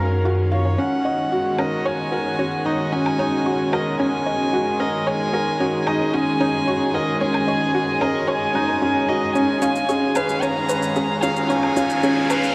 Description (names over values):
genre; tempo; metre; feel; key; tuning
piano and strings electronica; 112 BPM; 4/4; straight; Eb minor; A4 = 440 Hz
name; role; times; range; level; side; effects
dark violin; melody; 0.0-12.5 s; Bb4 to Bb5; -27 LUFS; equal; none
warm studio string section; sustained chords; 0.0-12.5 s; Eb3 to F5; -28 LUFS; equal; none
analog pluck; arpeggios; 0.0-12.4 s; Db4 to Gb5; -30 LUFS; equal; none
felt-muted upright piano; riff; 0.0-12.5 s; Db4 to F5; -25 LUFS; equal; none
warm sub bass; bass; 0.0-0.8 s; Gb2; -22 LUFS; equal; none
woodblock and shaker; drums; 1.6-12.5 s; none; -35 LUFS; equal; overdrive, high-pass filter on perc
riser; sound effects; 10.7-12.5 s; none; -34 LUFS; equal; none
room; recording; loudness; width
wet huge ambient reverb, RT60 7.7 s; dreamy mix soaked in reverb; -21 LUFS; mono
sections
0.8-12.5 A section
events
build-up 0.8-12.5; riser 10.7-12.5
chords
0.0 Gbmaj7; 0.8 Ebm7; 9.4 Db7